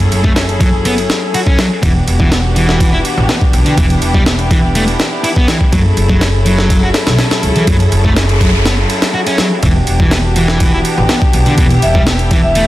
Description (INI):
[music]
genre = breakbeat, breaks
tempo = 123 BPM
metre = 4/4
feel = straight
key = E dorian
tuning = A4 = 440 Hz
[part]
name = warm chamber string section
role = sustained chords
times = 0.0-12.7 s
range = E3 to A4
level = -18 LUFS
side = left 1 dB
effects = sidechain pumping
[part]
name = upright bass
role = bass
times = 0.0-12.7 s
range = E1 to C#2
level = -14 LUFS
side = equal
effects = none
[part]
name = breakbeat sampler-style drum kit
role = drums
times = 0.0-12.7 s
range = kick drum, ride cymbal, snare drum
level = -14 LUFS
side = equal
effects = small room ambience
[part]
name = sludgy distorted guitar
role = riff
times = 0.2-12.6 s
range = D3 to F#4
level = -16 LUFS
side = equal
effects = overdrive, vintage 12-bit sampler grit, digital delay
[part]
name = noise sweep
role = sound effects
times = 7.9-9.6 s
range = none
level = -22 LUFS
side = equal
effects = none
[part]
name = vibraphone with medium hard mallets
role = melody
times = 11.8-12.7 s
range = E5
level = -15 LUFS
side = equal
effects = old record sound, digital delay
[sound]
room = light reverb, small room ambience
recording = dense, heavily limited modern master, vinyl crackle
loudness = -9 LUFS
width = side -15 dB against mid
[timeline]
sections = 0.0-12.7 A section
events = noise sweep 7.9-9.6; break 8.7-9.6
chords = 0.0 F#m7; 1.8 Em7; 5.7 F#m7; 9.6 Em7